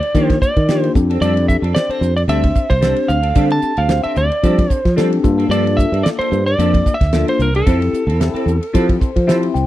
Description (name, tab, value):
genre	electric jazz fusion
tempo	112 BPM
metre	4/4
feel	swing 55% on 16ths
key	F major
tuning	A4 = 442 Hz
part	lightly driven lead guitar	melody	0.0-9.2 s	A4 to A5	-20 LUFS	right 1 dB	slapback echo
part	clean electric guitar	stabs	0.0-9.6 s	F3 to A4	-25 LUFS	right 3 dB	analog chorus
part	damped 70s drum kit	drums	0.0-9.7 s	hi-hat, kick drum, ride cymbal, snare drum	-17 LUFS	right 1 dB	none
part	mellow tine electric piano	accompaniment	0.1-9.7 s	Bb3 to G5	-20 LUFS	left 5 dB	phaser
part	fretless electric bass	bass	0.1-9.7 s	C2 to F3	-17 LUFS	right 1 dB	none
room	small room ambience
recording	dry, close 1970s-style studio recording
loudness	-13 LUFS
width	side -14 dB against mid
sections	0.0-9.7 A section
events	tine electric piano fill 8.7-9.7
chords	0.0 Ebmaj9; 1.0 F69; 5.2 Gm9; 7.7 Fmaj7